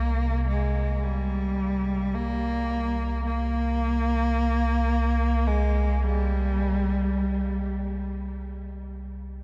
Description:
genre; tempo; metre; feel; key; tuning
dark ambient drone; free time; none; none; unclear; A4 = 439 Hz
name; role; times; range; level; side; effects
clear cello; melody; 0.0-7.7 s; G3 to Bb3; -30 LUFS; equal; shimmer reverb, tape echo
deep rumbling drone; drone; 0.0-9.4 s; C2; -29 LUFS; equal; built-in reverb
room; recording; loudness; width
wet huge ambient reverb, RT60 7.3 s; dark, warm production; -26 LUFS; mono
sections
0.0-9.4 A section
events
filter sweep on synth drone 0.0-9.4; fade-out 6.9-9.4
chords
none

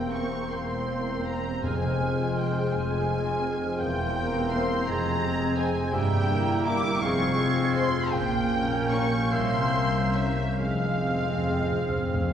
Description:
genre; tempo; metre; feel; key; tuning
classical; 45-57 BPM (dotted quarters); 6/8; rubato; F minor; A4 = 440 Hz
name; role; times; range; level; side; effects
muted studio violin section; melody; 0.0-12.3 s; E5 to D6; -33 LUFS; left 1 dB; none
clear clarinet; second line; 0.0-12.3 s; Bb3 to Db4; -35 LUFS; left 3 dB; none
flute section; second line; 0.0-12.3 s; Bb5 to Ab6; -37 LUFS; right 3 dB; none
muted studio violin section; second line; 0.0-12.3 s; E5 to D6; -37 LUFS; equal; none
warm cor anglais; second line; 0.0-12.3 s; C5 to G5; -36 LUFS; right 2 dB; none
mellow bassoon; accompaniment; 0.0-12.3 s; G3 to C4; -34 LUFS; right 1 dB; none
muted studio viola section; accompaniment; 0.0-12.3 s; C4 to Bb4; -35 LUFS; equal; none
dark French horn section; sustained chords; 0.0-11.6 s; Ab3 to E4; -36 LUFS; left 1 dB; none
concert harp; arpeggios; 0.0-12.3 s; E2 to C6; -32 LUFS; left 4 dB; none
muted studio cello section; bass; 0.0-12.3 s; C2 to Bb2; -32 LUFS; right 1 dB; none
muted studio double bass section; bass; 0.0-12.3 s; E1 to C2; -32 LUFS; right 2 dB; none
timpani; percussion; 1.6-2.7, 10.6-12.3 s; F2; -34 LUFS; equal; none
room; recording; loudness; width
wet scoring stage reverb, RT60 2.1 s; heard from further back in the room; -24 LUFS; side -9 dB against mid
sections
0.0-12.3 A section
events
timpani fill 10.6-12.3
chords
0.0 C7/E; 1.6 Fm; 3.8 C7/E; 4.9 Fm; 5.9 Edim/G; 7.0 Fm; 8.1 Gdim/Bb; 9.3 C7b9; 10.6 Fm

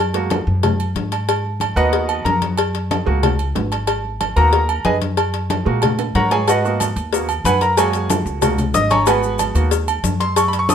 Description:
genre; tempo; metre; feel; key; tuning
latin, salsa; 185 BPM; 4/4; straight; G# minor; A4 = 440 Hz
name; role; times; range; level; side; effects
upright bass; bass; 0.0-10.7 s; G#1 to A#2; -21 LUFS; equal; none
bright grand piano; accompaniment; 0.1-10.7 s; G#3 to D#6; -18 LUFS; right 2 dB; none
congas; percussion; 0.1-10.7 s; none; -24 LUFS; left 3 dB; none
cowbell; percussion; 0.1-10.7 s; none; -23 LUFS; left 10 dB; none
agogo bells and timbales; percussion; 0.3-10.7 s; none; -24 LUFS; right 9 dB; none
maracas; percussion; 6.5-10.7 s; none; -29 LUFS; left 7 dB; none
room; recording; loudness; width
moderate studio reverb, RT60 0.7 s; minimal, uncompressed stereo recording; -15 LUFS; side -8 dB against mid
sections
0.0-10.7 A section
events
grand piano solo 0.0-10.7; drum fill 6.0-6.5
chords
0.0 F#add9; 1.3 G#m7; 2.6 F#add9; 3.9 G#m7; 5.2 F#add9; 6.5 G#m7; 7.8 F#add9; 9.1 G#m7

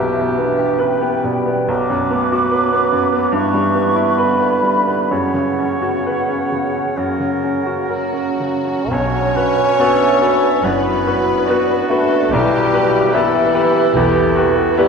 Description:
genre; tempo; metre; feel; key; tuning
classical, romantic movement for piano and orchestra; 56-75 BPM; 4/4; rubato; B minor; A4 = 440 Hz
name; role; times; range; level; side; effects
bright baby grand piano; melody; 0.0-14.9 s; B1 to B4; -18 LUFS; equal; none
clear oboe; second line; 0.0-14.9 s; E4 to C#5; -26 LUFS; equal; none
mellow clarinet; second line; 0.0-14.9 s; A3 to A4; -26 LUFS; left 1 dB; none
mellow hollow small flute group; second line; 0.0-14.9 s; B4 to D6; -22 LUFS; equal; none
warm bassoon; accompaniment; 0.0-14.9 s; C#3 to C#4; -20 LUFS; right 1 dB; none
mellow French horn section; sustained chords; 0.0-14.9 s; A#3 to G4; -26 LUFS; left 3 dB; none
clear symphonic violin section; second line; 7.9-14.9 s; E4 to C#5; -26 LUFS; left 1 dB; none
rich symphonic cello section; bass; 8.9-14.6 s; F#2 to B2; -30 LUFS; right 2 dB; none
rich symphonic double bass section; bass; 8.9-14.6 s; F#1 to B1; -28 LUFS; equal; none
rich symphonic violin section; melody; 9.8-14.9 s; none; barely audible; none; none
clear symphonic viola section; accompaniment; 9.8-14.9 s; none; barely audible; none; none
timpani; percussion; 12.3-13.5 s; B2; -31 LUFS; left 2 dB; none
room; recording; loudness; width
wet church reverb, RT60 3.9 s; minimal, uncompressed stereo recording; -14 LUFS; side -5 dB against mid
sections
0.0-8.9 A section; 8.9-14.9 A section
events
none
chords
0.0 Em/B; 1.7 Bm; 3.3 Em/G; 5.1 F#sus4; 7.0 F#; 8.9 Bm; 12.3 Em/B

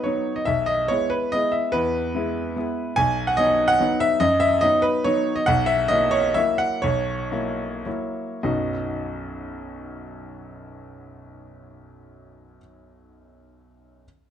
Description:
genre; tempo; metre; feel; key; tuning
classical, piano waltz; 98-152 BPM; 3/4; rubato; B major; A4 = 440 Hz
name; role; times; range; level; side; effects
clear grand piano; solo; 0.0-14.1 s; B1 to G#5; -20 LUFS; equal; none
room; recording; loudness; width
moderate large studio reverb, RT60 1.2 s; dark, warm production; -20 LUFS; side -9 dB against mid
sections
0.0-8.4 A section; 8.4-11.9 B section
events
slowing down 4.8-8.4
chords
0.5 E/B; 3.0 B; 5.5 F#7/B; 8.4 B

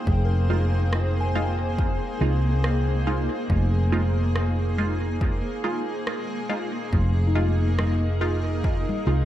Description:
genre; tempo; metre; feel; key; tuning
ambient dub; 70 BPM; 4/4; swing 58% on 16ths; F minor; A4 = 443 Hz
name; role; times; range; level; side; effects
granular cloud pad; sustained chords; 0.0-9.2 s; Bb3 to C5; -29 LUFS; equal; built-in reverb
soft synth bell; arpeggios; 0.0-9.2 s; Eb4 to Ab5; -36 LUFS; left 4 dB; chorus, phaser, dub echo
hollow-body short-scale fingered electric bass; bass; 0.1-9.2 s; F1 to C2; -22 LUFS; equal; tube saturation
electronic kick drum; drums; 0.1-8.8 s; none; -26 LUFS; equal; overdrive, studio reverb
filtered dub chord stab; stabs; 0.5-9.2 s; Ab3 to F4; -31 LUFS; right 2 dB; phaser, dub echo
electronic rim click and congas; drums; 0.9-9.0 s; none; -33 LUFS; equal; studio reverb, dub echo
drifting glass-harmonics texture; texture; 7.3-9.2 s; Eb4 to Eb5; -36 LUFS; left 1 dB; chorus, built-in reverb
room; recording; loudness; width
light reverb, digital ambience; none; -21 LUFS; side -12 dB against mid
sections
0.0-9.2 A section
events
none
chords
0.0 Fm7

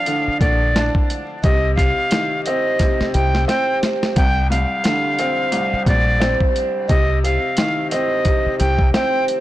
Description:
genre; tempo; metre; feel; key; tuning
hip hop, boom-bap hip-hop; 88 BPM; 4/4; swing 58% on 16ths; unclear; A4 = 441 Hz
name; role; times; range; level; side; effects
breathy bright jazz flute; melody; 0.0-9.2 s; D5 to G5; -21 LUFS; equal; high-pass filter, low-pass filter, tape echo
clear upright piano; accompaniment; 0.0-9.4 s; C2 to D4; -21 LUFS; equal; cassette tape, high-pass filter, low-pass filter
dusty soul sampler-style drum kit; drums; 0.1-9.4 s; hi-hat, kick drum, snare drum; -19 LUFS; equal; soft clipping on snare
deep dub fingered electric bass; bass; 0.3-8.9 s; Bb1 to C2; -19 LUFS; equal; none
room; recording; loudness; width
studio reverb; blown-out, overdriven recording, vinyl crackle, overdrive; -15 LUFS; side -15 dB against mid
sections
0.0-9.4 A section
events
drum fill 2.8-4.2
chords
0.0 Bb; 1.4 F5/C; 4.2 Bbadd9/C; 6.9 Cm

